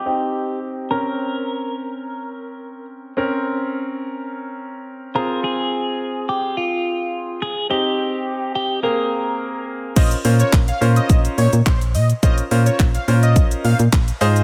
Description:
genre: dance-pop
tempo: 106 BPM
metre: 4/4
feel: straight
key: Bb dorian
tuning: A4 = 440 Hz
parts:
  - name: clean electric guitar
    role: melody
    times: 0.0-9.6 s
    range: F4 to Bb4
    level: -26 LUFS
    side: equal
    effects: phaser, low-pass filter, analog delay
  - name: clear concert grand piano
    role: accompaniment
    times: 0.0-14.4 s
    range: Bb3 to C5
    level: -26 LUFS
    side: equal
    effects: sidechain pumping, low-pass filter
  - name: unison lead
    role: melody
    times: 10.0-13.8 s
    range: C5 to F5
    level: -28 LUFS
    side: equal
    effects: analog delay
  - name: solid FM bass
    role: bass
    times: 10.0-14.4 s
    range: Bb1 to Bb2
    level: -19 LUFS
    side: equal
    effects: sidechain pumping
  - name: house drum kit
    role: drums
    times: 10.0-14.4 s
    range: crash cymbal, handclaps, hi-hat, kick drum, shaker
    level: -20 LUFS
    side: equal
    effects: none
room: moderate lush hall reverb, RT60 2.1 s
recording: dreamy mix soaked in reverb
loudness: -19 LUFS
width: mono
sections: 0.0-10.0 A section; 10.0-14.4 B section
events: filter sweep 0.0-10.0; drop 10.0-14.4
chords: 0.0 Cm; 0.9 Bbmadd9; 5.2 Ab6; 7.7 Cm; 8.8 Abadd9; 10.0 Bbmadd9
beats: 0.34 | 0.91 1.48 2.04 2.61 | 3.17 3.74 4.30 4.87 | 5.44 6.00 6.57 7.13 | 7.70 8.27 8.83 9.40 | 9.96 10.53 11.10 11.66 | 12.23 12.79 13.36 13.93

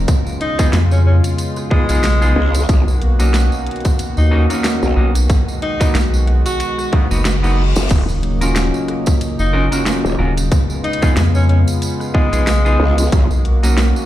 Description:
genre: glitch hop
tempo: 92 BPM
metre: 4/4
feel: swing 56% on 16ths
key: unclear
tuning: A4 = 439 Hz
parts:
  - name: warm analog pad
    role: sustained chords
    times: 0.0-14.1 s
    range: Cb3 to F#4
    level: -23 LUFS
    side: left 1 dB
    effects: chorus, sidechain pumping
  - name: rubbery square bass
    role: bass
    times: 0.0-13.9 s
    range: Eb1 to F2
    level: -14 LUFS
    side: equal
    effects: none
  - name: drum and bass drum kit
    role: drums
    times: 0.1-13.9 s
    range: crash cymbal, hi-hat, rim click, snare drum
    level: -22 LUFS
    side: right 1 dB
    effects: overdrive
  - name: electronic kick drum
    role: drums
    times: 0.1-13.3 s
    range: none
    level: -13 LUFS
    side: equal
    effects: overdrive
  - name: tambourine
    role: percussion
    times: 0.1-14.1 s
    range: none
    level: -30 LUFS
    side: right 3 dB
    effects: none
  - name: warm tenor saxophone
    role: melody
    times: 0.4-13.1 s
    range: Ab3 to Gb4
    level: -24 LUFS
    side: left 1 dB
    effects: dub echo
  - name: semi-hollow electric guitar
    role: stabs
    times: 0.6-14.1 s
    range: A#3 to Bb4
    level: -23 LUFS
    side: equal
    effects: vintage 12-bit sampler grit, sidechain pumping, dub echo
  - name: growl bass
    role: bass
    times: 2.4-13.3 s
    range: Eb1 to Db2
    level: -15 LUFS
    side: equal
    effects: distortion, chorus, tube saturation
  - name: reverse cymbal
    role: sound effects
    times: 6.9-7.9 s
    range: none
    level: -27 LUFS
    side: left 2 dB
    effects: none
room: light reverb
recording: played on a big sound system in a bare room, large studio reverb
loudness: -13 LUFS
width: side -13 dB against mid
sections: 0.0-14.1 A section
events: reverse cymbal 6.9-7.9; kick drops out 7.3-7.9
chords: 0.1 Db7; 2.7 Bmaj7; 5.3 Abm7; 7.9 Ebm7; 10.5 Db7; 13.1 Bmaj7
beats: | 0.08 0.73 1.38 2.04 | 2.69 3.34 3.99 4.64 | 5.30 5.95 6.60 7.25 | 7.91 8.56 9.21 9.86 | 10.52 11.17 11.82 12.47 | 13.12 13.78

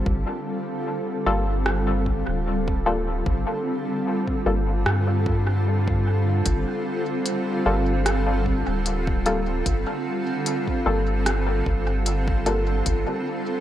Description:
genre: ambient dub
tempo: 75 BPM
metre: 4/4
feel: swing 53% on 16ths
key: unclear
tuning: A4 = 440 Hz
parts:
  - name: granular cloud pad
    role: sustained chords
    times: 0.0-13.6 s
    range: D3 to A4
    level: -26 LUFS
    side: right 1 dB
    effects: built-in reverb
  - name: soft dub sub bass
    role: bass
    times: 0.0-13.1 s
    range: D1 to G2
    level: -24 LUFS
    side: equal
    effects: none
  - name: electronic kick drum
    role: drums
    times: 0.1-13.0 s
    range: none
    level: -27 LUFS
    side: equal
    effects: none
  - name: filtered dub chord stab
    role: stabs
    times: 1.3-12.6 s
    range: G3 to A4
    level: -29 LUFS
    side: left 2 dB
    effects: chorus, dub echo
  - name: organic electronic drum kit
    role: drums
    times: 1.7-13.0 s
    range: hi-hat, rim click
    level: -30 LUFS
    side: equal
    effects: dub echo
room: light reverb, digital ambience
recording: none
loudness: -21 LUFS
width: side -12 dB against mid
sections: 0.0-13.6 A section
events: none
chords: 0.0 Gm9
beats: | 0.06 0.86 1.66 2.46 | 3.26 4.06 4.86 5.66 | 6.46 7.26 8.06 8.86 | 9.66 10.46 11.26 12.06 | 12.86

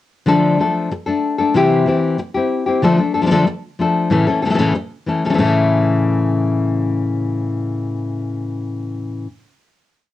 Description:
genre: flamenco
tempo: 187 BPM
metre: 4/4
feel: straight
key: unclear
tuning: A4 = 437 Hz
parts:
  - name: nylon-string guitar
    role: solo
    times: 0.3-9.3 s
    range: A2 to A4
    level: -15 LUFS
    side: left 2 dB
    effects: cassette tape
room: moderate studio reverb, RT60 0.5 s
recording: home recording on cassette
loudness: -15 LUFS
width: side -14 dB against mid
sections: 0.3-5.4 groove; 5.4-8.0 final chord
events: none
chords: 0.3 Dm; 1.5 C; 2.8 Dm; 4.1 A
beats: | 0.27 0.59 0.91 1.23 | 1.55 1.87 2.19 2.51 | 2.83 3.15 3.47 3.79 | 4.11 4.43 4.75 5.07 | 5.39 5.71 6.03 6.35 | 6.67 6.99 7.31 7.64

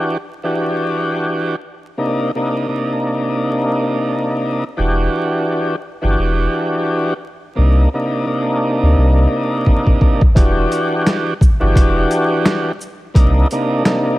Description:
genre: hip hop, boom-bap hip-hop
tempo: 86 BPM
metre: 4/4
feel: swing 58% on 16ths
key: E minor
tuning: A4 = 442 Hz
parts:
  - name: tonewheel organ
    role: accompaniment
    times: 0.0-14.2 s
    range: C3 to G4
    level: -17 LUFS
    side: equal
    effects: overdrive, slow rotary speaker, cassette tape, high-pass filter, low-pass filter
  - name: warm sub bass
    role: bass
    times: 4.8-13.4 s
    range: E1 to D2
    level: -14 LUFS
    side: equal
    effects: none
  - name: boom bap sampler-style drum kit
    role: drums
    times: 9.7-14.0 s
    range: hi-hat, kick drum, shaker, snare drum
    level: -13 LUFS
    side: equal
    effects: none
room: little or no reverb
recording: vinyl crackle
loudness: -14 LUFS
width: side -17 dB against mid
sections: 0.0-10.4 A section; 10.4-14.2 B section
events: drum fill 9.7-10.4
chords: 0.0 Em9; 2.0 Cm9; 4.8 Em9; 7.6 Cm9; 10.4 Em9; 13.2 Cm9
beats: 0.59 1.29 | 1.99 2.69 3.38 4.08 | 4.78 5.48 6.17 6.87 | 7.57 8.27 8.97 9.66 | 10.36 11.06 11.76 12.45 | 13.15 13.85

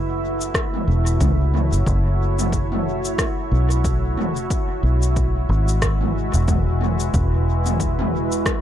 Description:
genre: ambient dub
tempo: 91 BPM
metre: 4/4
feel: swing 57% on 16ths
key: F# minor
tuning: A4 = 440 Hz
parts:
  - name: deep dark ambient pad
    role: sustained chords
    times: 0.0-8.6 s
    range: G#3 to E5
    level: -25 LUFS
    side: equal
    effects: chorus, built-in reverb
  - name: fingered electric bass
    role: bass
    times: 0.0-8.4 s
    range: E1 to C#2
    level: -20 LUFS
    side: equal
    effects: tube saturation
  - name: organic electronic drum kit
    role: drums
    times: 0.4-8.6 s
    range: cabasa, rim click, toms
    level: -25 LUFS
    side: equal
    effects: dub echo
  - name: electronic kick drum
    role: drums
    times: 0.5-8.6 s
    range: none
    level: -24 LUFS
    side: equal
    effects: overdrive
room: little or no reverb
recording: echo-heavy mix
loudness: -18 LUFS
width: side -11 dB against mid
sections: 0.0-8.6 A section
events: none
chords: 0.0 F#m7; 4.5 Eadd9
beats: 0.55 1.21 | 1.87 2.52 3.18 3.84 | 4.50 5.16 5.82 6.48 | 7.14 7.80 8.46

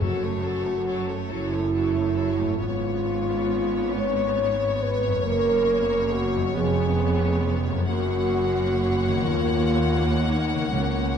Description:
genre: classical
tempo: 40-47 BPM (dotted quarters)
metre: 6/8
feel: rubato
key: F# major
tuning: A4 = 441 Hz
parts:
  - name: clear chamber violin section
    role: melody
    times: 0.0-11.2 s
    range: A4 to F#5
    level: -34 LUFS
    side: left 5 dB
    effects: none
  - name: rich chamber violin section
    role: second line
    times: 0.0-11.2 s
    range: A4 to C#5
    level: -35 LUFS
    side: left 6 dB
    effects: none
  - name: rich chamber viola section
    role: accompaniment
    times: 0.0-11.2 s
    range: F#3 to B3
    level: -30 LUFS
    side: right 2 dB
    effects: none
  - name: mellow French horn section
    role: sustained chords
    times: 0.0-11.2 s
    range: C#4 to C#5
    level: -25 LUFS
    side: left 1 dB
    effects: none
  - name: concert harp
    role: arpeggios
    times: 0.0-11.2 s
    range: E#2 to C#5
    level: -32 LUFS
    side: left 6 dB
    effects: none
  - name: rich symphonic cello section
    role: bass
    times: 0.0-11.2 s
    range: C#2 to G#2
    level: -30 LUFS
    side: right 4 dB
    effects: none
  - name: rich symphonic double bass section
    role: bass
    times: 0.0-11.2 s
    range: E#1 to D#2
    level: -30 LUFS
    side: right 4 dB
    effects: none
  - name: timpani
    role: percussion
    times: 0.0-1.3, 10.7-11.2 s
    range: F#2 to C#3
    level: -31 LUFS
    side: equal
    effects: none
room: moderate scoring stage reverb, RT60 1.9 s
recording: dark, warm production, nothing above 10.8 kHz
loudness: -21 LUFS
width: side -7 dB against mid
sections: 0.0-11.2 A section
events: none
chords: 0.0 F#m; 2.6 C#7/G#; 5.2 F#; 6.5 C#7/E#; 7.9 F#; 9.3 D#m7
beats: | 0.01 1.30 | 2.59 3.94 | 5.24 6.55 | 7.88 9.26 | 10.72

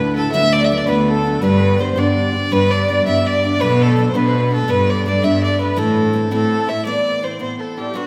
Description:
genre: celtic folk, Celtic jig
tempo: 110 BPM (dotted quarters)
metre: 6/8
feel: straight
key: A dorian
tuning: A4 = 436 Hz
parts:
  - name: clear fiddle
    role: melody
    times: 0.0-8.1 s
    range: F#4 to E5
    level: -22 LUFS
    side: equal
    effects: none
  - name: Irish bouzouki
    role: second line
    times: 0.0-8.1 s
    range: F#3 to E4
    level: -28 LUFS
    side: equal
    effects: none
  - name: bright reedy jazz flute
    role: second line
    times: 0.0-8.1 s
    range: F#4 to E5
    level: -28 LUFS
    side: equal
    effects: none
  - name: picked steel-string acoustic guitar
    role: accompaniment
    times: 0.0-8.1 s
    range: D2 to B4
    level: -23 LUFS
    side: equal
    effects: none
  - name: warm cello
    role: bass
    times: 0.0-6.7 s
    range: D2 to B2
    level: -21 LUFS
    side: equal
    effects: none
room: wet scoring stage reverb, RT60 1.6 s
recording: recorded in a church or concert hall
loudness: -17 LUFS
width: mono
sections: 0.0-6.9 A section; 6.9-8.1 B section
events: none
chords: 0.3 Bm/D; 1.4 G; 3.6 Bm7; 4.7 Gadd9; 5.8 Am; 6.9 Amadd9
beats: | 0.34 0.89 | 1.43 1.98 | 2.52 3.06 | 3.60 4.15 | 4.69 5.23 | 5.78 6.32 | 6.86 7.41 | 7.95

